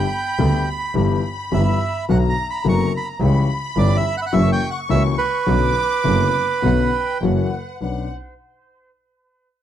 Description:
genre	tango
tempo	106 BPM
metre	4/4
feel	rubato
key	B harmonic minor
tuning	A4 = 440 Hz
part	bandoneon	melody	0.0-7.2 s	B4 to C#6	-23 LUFS	right 5 dB	tape echo
part	warm studio violin section	second line	0.0-8.1 s	F#5 to D6	-28 LUFS	left 3 dB	none
part	warm concert grand piano	accompaniment	0.0-8.1 s	F#1 to B4	-21 LUFS	left 6 dB	none
part	clear double bass	bass	0.0-8.0 s	F#1 to D2	-21 LUFS	right 2 dB	none
room	little or no reverb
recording	dry, close 1970s-style studio recording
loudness	-17 LUFS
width	side -10 dB against mid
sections	0.0-7.8 A section; 7.8-9.6 B section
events	none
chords	0.0 G; 0.9 Em/G; 2.1 Bm; 3.2 C#dim; 4.3 F#7; 5.5 Bmadd9; 7.2 F#7; 7.8 Bmadd9

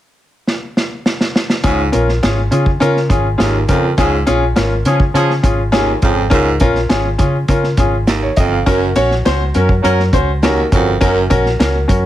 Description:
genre	uptempo 1960s-style soul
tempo	102 BPM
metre	4/4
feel	straight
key	Db major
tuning	A4 = 440 Hz
part	vintage drum kit	drums	0.5-12.0 s	hi-hat, kick drum, snare drum	-17 LUFS	equal	none
part	clear baby grand piano	accompaniment	1.6-12.0 s	Db4 to F5	-16 LUFS	left 1 dB	none
part	growling baritone saxophone	riff	1.6-11.3 s	Eb2 to Ab2	-19 LUFS	right 4 dB	none
part	vintage muted fingered electric bass	bass	1.6-12.1 s	Gb1 to Db3	-17 LUFS	equal	none
part	warm horn section	second line	4.0-10.0 s	F3 to Bb4	-19 LUFS	right 1 dB	none
room	light reverb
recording	heavily compressed radio sound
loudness	-12 LUFS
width	side -13 dB against mid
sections	0.0-1.6 A section; 1.6-4.0 B section; 4.0-12.1 C section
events	drum fill 0.5-1.6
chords	0.0 N.C.; 1.6 Db; 8.7 Gb

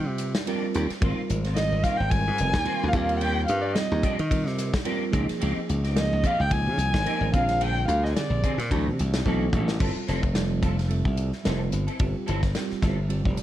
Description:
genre	electric jazz fusion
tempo	109 BPM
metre	4/4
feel	swing 56% on 16ths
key	Eb major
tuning	A4 = 440 Hz
part	bell-like tine electric piano	accompaniment	0.0-13.4 s	D3 to F5	-31 LUFS	right 4 dB	phaser
part	glassy slap bass	bass	0.0-13.4 s	F1 to Eb3	-26 LUFS	equal	none
part	clean electric guitar	stabs	0.1-13.4 s	Eb3 to A4	-35 LUFS	left 1 dB	ensemble chorus
part	modern studio drum kit	drums	0.2-13.4 s	crash cymbal, hi-hat, kick drum, ride cymbal, snare drum	-29 LUFS	left 1 dB	none
part	dark violin	melody	1.6-8.7 s	D5 to Ab5	-27 LUFS	equal	slapback echo
room	small room ambience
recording	dark, warm production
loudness	-22 LUFS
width	side -13 dB against mid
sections	0.0-9.8 A section; 9.8-13.4 B section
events	tine electric piano fill 9.0-9.8; drum fill 9.3-9.8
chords	0.0 Ebmaj9; 1.0 Ab69; 2.9 Ebmaj9; 5.1 Dbmaj9#11; 7.3 Bb9; 8.7 D9; 9.8 G13sus4

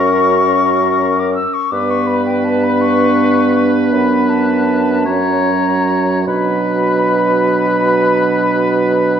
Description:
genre	classical, slow romantic movement for wind quintet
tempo	48-56 BPM (dotted quarters)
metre	12/8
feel	rubato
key	B minor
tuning	A4 = 441 Hz
part	silver concert flute	melody	0.0-9.2 s	G5 to E6	-18 LUFS	left 5 dB	none
part	warm oboe	second line	0.0-9.2 s	A#4 to C#5	-20 LUFS	left 1 dB	none
part	mellow clarinet	accompaniment	0.0-9.2 s	C#4 to F#4	-19 LUFS	right 7 dB	none
part	warm French horn	accompaniment	0.0-9.2 s	F#3 to C#4	-19 LUFS	left 1 dB	none
part	warm bassoon	bass	0.0-9.2 s	F#2 to B2	-17 LUFS	right 2 dB	none
room	wet recital hall reverb, RT60 1.7 s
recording	none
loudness	-12 LUFS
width	side -8 dB against mid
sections	0.0-9.2 A section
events	none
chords	0.0 F#; 1.7 G; 3.9 Bm/F#; 5.1 F#; 6.3 Bm

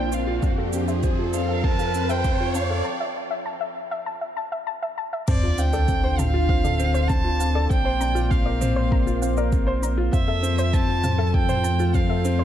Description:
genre	piano and strings electronica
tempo	99 BPM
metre	4/4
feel	straight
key	D minor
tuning	A4 = 441 Hz
part	rich violin	melody	0.0-12.4 s	D5 to A5	-29 LUFS	right 2 dB	low-pass filter, ping-pong delay
part	lush unison pad	sustained chords	0.0-12.4 s	Bb2 to F5	-30 LUFS	equal	chorus
part	soft round pluck	arpeggios	0.0-12.4 s	C5 to C6	-32 LUFS	left 3 dB	chorus, sidechain pumping, ping-pong delay
part	dark grand piano	riff	0.0-12.4 s	C4 to C5	-28 LUFS	left 2 dB	ping-pong delay
part	warm sub bass	bass	0.0-12.4 s	Bb1 to F2	-24 LUFS	equal	tube saturation, sidechain pumping
part	riser and sub drop	sound effects	0.0-7.7 s	none	-30 LUFS	right 1 dB	none
part	minimal click drum kit	drums	0.1-12.4 s	crash cymbal, shaker, toms	-32 LUFS	right 2 dB	studio ambience
part	electronic kick drum	drums	0.4-12.1 s	none	-23 LUFS	equal	studio ambience
room	light reverb, digital ambience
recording	dark, warm production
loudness	-20 LUFS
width	side -10 dB against mid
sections	0.0-5.3 A section; 5.3-12.4 B section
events	build-up 0.0-5.3; riser 0.0-2.9; filter sweep on synth arpeggio sound 0.0-5.3; break 2.9-5.3; drop 5.3-12.4; impact 5.3-7.7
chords	0.4 Fmaj7; 2.9 Esus4; 5.3 Dm7; 7.7 Bbadd9; 10.1 Fmaj7

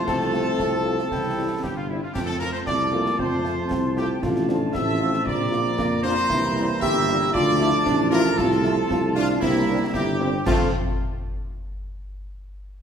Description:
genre	military-style march for wind band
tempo	116 BPM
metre	2/4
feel	straight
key	F major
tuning	A4 = 440 Hz
part	clear trumpet section	melody	0.0-10.7 s	E4 to E5	-28 LUFS	equal	none
part	bright small flute group	second line	0.0-10.8 s	E5 to E6	-29 LUFS	right 1 dB	none
part	mellow woodwind section	second line	0.0-10.7 s	E4 to Bb5	-32 LUFS	equal	none
part	dark trombone section	sustained chords	0.0-10.7 s	E3 to C4	-29 LUFS	right 1 dB	none
part	warm euphonium	second line	0.1-10.2 s	A3 to G4	-28 LUFS	equal	none
part	dark tuba	bass	0.1-10.7 s	G1 to F2	-26 LUFS	right 1 dB	none
part	concert snare drum, clash cymbals and concert bass drum	drums	0.1-10.8 s	none	-32 LUFS	equal	none
part	clear French horn section	accompaniment	0.3-10.7 s	F3 to F4	-32 LUFS	left 3 dB	none
room	wet recital hall reverb, RT60 1.7 s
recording	recorded in a church or concert hall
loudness	-20 LUFS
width	side -7 dB against mid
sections	0.0-10.5 A section; 10.5-11.5 B section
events	none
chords	0.0 F/C; 1.1 C; 2.1 F; 4.2 F/A; 5.3 Bb; 6.3 C7; 7.3 Dm; 8.4 F/C; 9.4 C7; 10.5 F

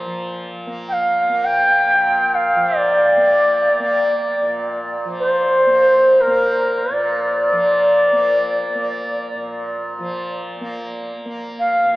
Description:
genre	world meditative, free-time meditation music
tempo	free time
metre	none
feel	none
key	Bb major pentatonic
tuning	A4 = 440 Hz
part	tanpura	drone	0.0-12.0 s	Bb2 to Bb3	-28 LUFS	equal	none
part	bright reedy bansuri	melody	0.9-12.0 s	Bb4 to G5	-15 LUFS	equal	none
room	wet cathedral reverb, RT60 7.2 s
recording	in a vast, echoing space, AM radio sound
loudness	-15 LUFS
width	side -19 dB against mid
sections	0.1-12.0 A section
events	none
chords	none

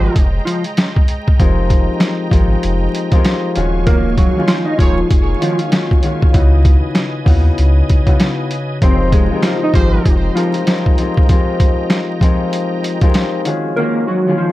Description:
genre	hip hop, boom-bap hip-hop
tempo	97 BPM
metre	4/4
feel	swing 59% on 16ths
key	unclear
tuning	A4 = 441 Hz
part	mellow electric guitar	melody	0.0-14.5 s	F3 to Eb5	-18 LUFS	right 1 dB	ensemble chorus, high-pass filter, low-pass filter
part	bright tonewheel organ	sustained chords	0.0-14.5 s	Ab3 to Eb6	-28 LUFS	right 1 dB	chorus vibrato, stopped rotary speaker, high-pass filter, low-pass filter
part	clear horn section	stabs	0.0-0.3, 4.8-5.0, 9.7-10.2 s	Ab3 to Db5	-26 LUFS	right 3 dB	high-pass filter, low-pass filter, tape echo
part	warm sub bass	bass	0.0-10.3 s	Eb1 to Eb2	-15 LUFS	equal	none
part	boom bap sampler-style drum kit	drums	0.2-13.6 s	hi-hat, kick drum, snare drum	-13 LUFS	equal	none
part	concert harp	accompaniment	1.4-14.5 s	Db3 to Bb4	-18 LUFS	left 2 dB	high-pass filter, low-pass filter
room	light reverb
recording	dark, warm production, vinyl crackle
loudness	-12 LUFS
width	side -16 dB against mid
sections	0.0-14.5 A section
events	break 0.0-1.4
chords	0.0 Fm11; 3.6 Ebm11; 6.3 Dbm11; 8.8 Fm11; 13.5 Ebm11

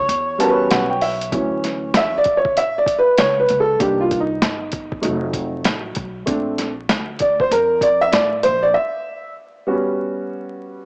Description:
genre	hip hop, jazz-hop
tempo	97 BPM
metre	4/4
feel	swing 62% on 16ths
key	D major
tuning	A4 = 440 Hz
part	breathy tenor saxophone	melody	0.0-0.7 s	C#5	-24 LUFS	equal	cassette tape, tape echo
part	upright bass	bass	0.0-8.7 s	F1 to A2	-29 LUFS	equal	none
part	lo-fi sampler-style drum kit	drums	0.1-8.6 s	hi-hat, kick drum, snare drum	-22 LUFS	equal	cassette tape
part	warm upright piano	accompaniment	0.4-10.9 s	Eb3 to A5	-16 LUFS	equal	none
room	moderate spring reverb, RT60 2.6 s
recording	home recording on cassette, vinyl crackle, small speaker sound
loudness	-16 LUFS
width	side -30 dB against mid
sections	0.0-1.3 A section; 1.3-10.9 B section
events	kick muted 0.1-1.3; upright piano fill 0.1-1.3; upright piano solo 1.3-10.9; break 8.7-10.9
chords	0.0 A13; 1.3 Dmaj9; 3.8 Cm9; 5.0 F7b9; 6.3 Bbmaj9; 8.7 Gmaj7#11

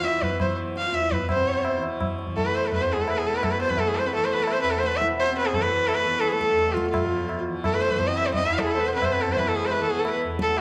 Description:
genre	indian classical, Hindustani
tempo	171 BPM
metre	4/4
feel	straight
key	E raga bhairav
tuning	A4 = 440 Hz
part	clear sarangi	melody	0.0-10.6 s	F4 to F5+20c	-26 LUFS	equal	none
part	mellow tenor saxophone	second line	0.0-10.6 s	F3 to F4	-34 LUFS	equal	none
part	tanpura	drone	0.0-10.6 s	E2 to E3	-35 LUFS	equal	none
part	tabla	percussion	0.0-10.6 s	none	-33 LUFS	equal	none
room	moderate concert hall reverb, RT60 2.0 s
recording	none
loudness	-24 LUFS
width	mono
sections	0.0-1.3 A section; 1.3-10.6 B section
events	speeding up 0.0-10.6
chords	none

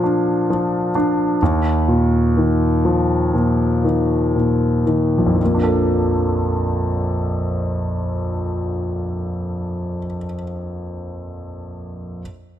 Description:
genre	pop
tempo	56-66 BPM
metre	4/4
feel	straight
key	Bb major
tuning	A4 = 444 Hz
part	warm concert grand piano	accompaniment	0.0-12.2 s	Bb1 to A4	-17 LUFS	equal	none
room	light reverb, small room ambience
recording	none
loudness	-17 LUFS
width	side -11 dB against mid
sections	0.0-5.4 A section; 5.4-9.7 B section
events	slowing down 0.0-5.4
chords	0.0 Bb; 1.4 Ebsus2; 5.4 Bbmaj7

